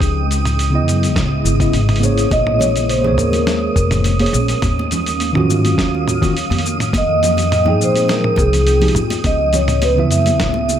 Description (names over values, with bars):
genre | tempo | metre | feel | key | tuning
sunset chillout | 104 BPM | 4/4 | straight | unclear | A4 = 441 Hz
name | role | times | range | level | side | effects
shimmering ambient pad | sustained chords | 0.0-10.8 s | Db3 to G5 | -23 LUFS | equal | chorus, built-in reverb, phaser
upright bass | bass | 0.0-10.8 s | F1 to Bb2 | -18 LUFS | equal | none
dusty soul sampler-style drum kit | drums | 0.0-10.8 s | cabasa, hi-hat, snare drum, toms | -22 LUFS | equal | overdrive
electronic kick drum | drums | 0.0-10.5 s | none | -19 LUFS | equal | overdrive
wind-like tuned noise texture | texture | 0.0-10.8 s | Eb6 | -26 LUFS | right 6 dB | built-in reverb
mellow tine electric piano | accompaniment | 0.7-10.8 s | Db3 to G5 | -20 LUFS | equal | auto-pan, ping-pong delay
vibraphone with soft mallets | melody | 2.3-10.8 s | Ab4 to Fb5 | -18 LUFS | equal | ping-pong delay
congas | percussion | 2.3-10.8 s | none | -25 LUFS | right 1 dB | none
room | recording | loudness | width
light reverb | none | -13 LUFS | side -10 dB against mid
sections
0.0-10.8 A section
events
none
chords
0.0 Dbm9; 2.3 Bbm9; 4.6 Ebm9; 6.6 Fm9; 9.2 Dbm9